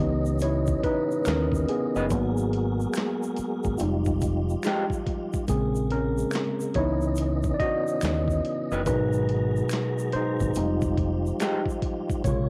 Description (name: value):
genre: R&B, neo-soul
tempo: 71 BPM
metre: 4/4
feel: swing 64% on 16ths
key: unclear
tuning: A4 = 438 Hz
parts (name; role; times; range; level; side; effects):
- tine electric piano; accompaniment; 0.0-12.5 s; Cb3 to Eb5; -29 LUFS; equal; overdrive, cassette tape
- mellow tonewheel organ; sustained chords; 0.0-12.5 s; Db3 to Bb5; -35 LUFS; equal; fast rotary speaker, chorus vibrato, cassette tape
- deep dub fingered electric bass; bass; 0.0-12.5 s; F1 to Eb2; -30 LUFS; equal; none
- tube shaker and finger snaps; percussion; 0.3-12.5 s; none; -44 LUFS; equal; none
- dusty soul sampler-style drum kit; drums; 0.4-12.5 s; handclaps, hi-hat, kick drum, snare drum; -33 LUFS; equal; cassette tape
- electric guitar through a small old amp; second line; 2.0-11.6 s; Ab3 to Eb5; -33 LUFS; equal; cassette tape
room: light reverb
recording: home recording on cassette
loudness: -26 LUFS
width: mono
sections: 0.0-12.5 A section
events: tine electric piano solo 0.0-12.5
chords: 0.0 Dbm9; 2.1 Abm9; 3.8 Fm9; 5.5 Bbm9; 6.7 Dbm9; 8.9 Abm9; 10.6 Fm9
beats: 0.41 1.26 | 2.10 2.95 3.79 4.64 | 5.48 6.33 7.17 8.02 | 8.86 9.71 10.55 11.40 | 12.24